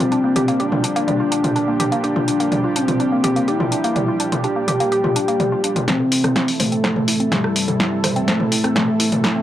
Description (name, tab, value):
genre	melodic techno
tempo	125 BPM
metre	4/4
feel	straight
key	A phrygian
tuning	A4 = 440 Hz
part	soft octave-layered synth lead	melody	0.0-9.4 s	G3 to G4	-19 LUFS	left 1 dB	chorus, analog delay
part	lush unison pad	sustained chords	0.0-9.4 s	Bb2 to A4	-26 LUFS	right 1 dB	chorus
part	woody wave-folded pluck	arpeggios	0.0-9.4 s	G3 to C5	-23 LUFS	right 1 dB	chorus, analog delay
part	deep house drum kit	drums	0.0-9.3 s	hi-hat, rim click, snare drum, toms	-21 LUFS	equal	overdrive
room	little or no reverb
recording	dry, gritty hardware recording, cassette tape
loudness	-16 LUFS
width	side -12 dB against mid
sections	0.0-5.9 A section; 5.9-9.4 B section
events	filter sweep on soft synth lead 0.0-5.9; build-up 5.9-9.4; drum fill 5.9-9.4; filter sweep on synth pluck 5.9-9.4; filter sweep on analog synth pad 5.9-9.4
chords	0.0 Bb6; 5.9 Am